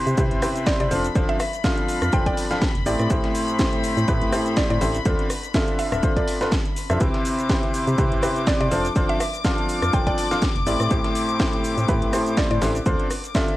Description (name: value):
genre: piano house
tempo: 123 BPM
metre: 4/4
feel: swing 55% on 16ths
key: unclear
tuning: A4 = 443 Hz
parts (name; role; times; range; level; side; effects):
- rich chamber string section; sustained chords; 0.0-13.6 s; B5 to D6; -32 LUFS; left 5 dB; sidechain pumping
- clear upright piano; riff; 0.0-13.6 s; A2 to F5; -23 LUFS; equal; sidechain pumping
- organ-like FM bass; bass; 0.1-13.0 s; D1 to C3; -25 LUFS; equal; sidechain pumping
- house drum kit; drums; 0.1-13.6 s; hi-hat, rim click, shaker, snare drum; -30 LUFS; equal; overdrive, cassette tape
- breakbeat sampler-style drum kit; drums; 0.2-13.5 s; hi-hat, shaker, snare drum; -36 LUFS; equal; none
- electronic kick drum; drums; 0.2-13.5 s; none; -24 LUFS; equal; overdrive, cassette tape
- mallet-like synth pluck; melody; 0.7-12.6 s; D5 to G5; -30 LUFS; equal; chorus, cassette tape, tape echo
room: light reverb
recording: home recording on cassette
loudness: -19 LUFS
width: side -16 dB against mid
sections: 0.0-13.6 A section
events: none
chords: 0.0 Cmaj7; 0.9 F6; 2.9 Am7; 5.1 Dm7; 7.0 Cmaj7; 8.7 F6; 10.7 Am7; 12.9 Dm7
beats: 0.18 0.67 | 1.15 1.64 2.13 2.62 | 3.10 3.59 4.08 4.57 | 5.06 5.54 6.03 6.52 | 7.01 7.50 7.98 8.47 | 8.96 9.45 9.94 10.42 | 10.91 11.40 11.89 12.37 | 12.86 13.35